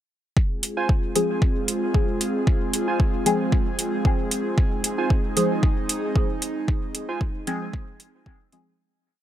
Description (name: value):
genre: dub techno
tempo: 114 BPM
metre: 4/4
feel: swing 53% on 16ths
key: F minor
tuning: A4 = 440 Hz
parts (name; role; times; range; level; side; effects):
- airy breathy pad; sustained chords; 0.6-8.7 s; Ab3 to Ab4; -27 LUFS; right 1 dB; chorus, sidechain pumping
- electronic kick drum; drums; 0.4-8.4 s; none; -21 LUFS; equal; overdrive
- electronic hi-hat; drums; 0.6-8.6 s; none; -24 LUFS; right 1 dB; overdrive
- warbly lo-fi synth keys; riff; 0.8-7.2 s; F4 to Ab5; -32 LUFS; right 4 dB; chorus, sidechain pumping, dub echo
- deep mellow chord stab; stabs; 1.2-8.7 s; F3 to Ab4; -26 LUFS; left 1 dB; chorus, phaser, sidechain pumping, dub echo
room: little or no reverb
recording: none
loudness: -21 LUFS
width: side -11 dB against mid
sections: 0.4-8.8 groove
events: fade-out 6.0-8.8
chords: 0.4 Fm